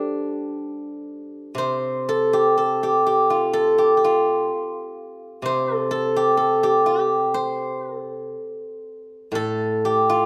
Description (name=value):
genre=chinese traditional, Chinese solo plucked strings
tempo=62 BPM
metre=2/4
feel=rubato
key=C zhi mode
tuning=A4 = 438 Hz
part: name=steel-string zither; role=solo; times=0.0-10.3 s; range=A2 to D5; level=-22 LUFS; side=equal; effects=none
room=light reverb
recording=close, detailed microphones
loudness=-21 LUFS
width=mono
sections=0.0-9.3 A section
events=none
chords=none